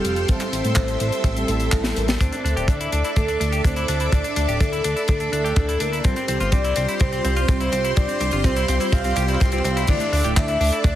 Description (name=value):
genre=italo disco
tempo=125 BPM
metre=4/4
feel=straight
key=D minor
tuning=A4 = 440 Hz
part: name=soft octave-layered synth lead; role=melody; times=0.0-11.0 s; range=G4 to F5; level=-26 LUFS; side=equal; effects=chorus, phaser, cassette tape, tape echo
part: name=string machine, full ensemble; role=sustained chords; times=0.0-11.0 s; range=G4 to D6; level=-28 LUFS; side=equal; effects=ensemble chorus
part: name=mellow synth brass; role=stabs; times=0.0-10.8 s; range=G3 to D5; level=-29 LUFS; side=right 3 dB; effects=chorus
part: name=chorused synth bass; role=bass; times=0.0-11.0 s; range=D1 to A2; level=-24 LUFS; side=equal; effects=none
part: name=tight funk drum kit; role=drums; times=0.0-10.9 s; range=crash cymbal, handclaps, hi-hat, snare drum, toms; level=-29 LUFS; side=left 2 dB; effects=high-pass filter on hats, small room ambience, high-pass filter on toms, high-pass filter on cymbals, high-pass filter on snare, high-pass filter on room
part: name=kick drum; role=drums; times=0.3-10.9 s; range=none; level=-20 LUFS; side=equal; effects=small room ambience
part: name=semi-hollow electric guitar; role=arpeggios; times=2.2-10.9 s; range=C4 to G4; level=-28 LUFS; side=left 1 dB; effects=spring reverb, tape echo
room=light reverb, small room ambience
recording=heavily compressed radio sound, multiband compression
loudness=-18 LUFS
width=side -12 dB against mid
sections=0.0-2.2 A section; 2.2-9.9 B section; 9.9-11.0 C section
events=drum fill 1.8-2.2, 2.2-9.9; filter sweep on analog polysynth 2.2-9.9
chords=0.3 Am7; 2.2 Dsus2; 6.0 Csus4; 9.9 Dsus2